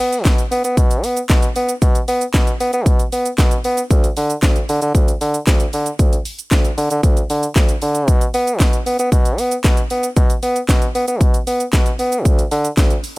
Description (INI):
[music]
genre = dance-pop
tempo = 115 BPM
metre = 4/4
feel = straight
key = B minor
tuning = A4 = 441 Hz
[part]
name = warm bassoon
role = bass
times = 0.0-12.9 s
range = D2 to B3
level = -19 LUFS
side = equal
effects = sidechain pumping
[part]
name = house drum kit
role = drums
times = 0.1-13.2 s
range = handclaps, hi-hat, kick drum, shaker, snare drum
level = -15 LUFS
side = equal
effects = none
[sound]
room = little or no reverb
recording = none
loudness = -14 LUFS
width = side -22 dB against mid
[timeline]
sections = 0.0-13.2 A section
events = none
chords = none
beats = 0.25 0.78 1.30 | 1.82 2.34 2.86 3.38 | 3.90 4.43 4.95 5.47 | 5.99 6.51 7.04 7.56 | 8.08 8.60 9.12 9.64 | 10.17 10.69 11.21 11.73 | 12.25 12.78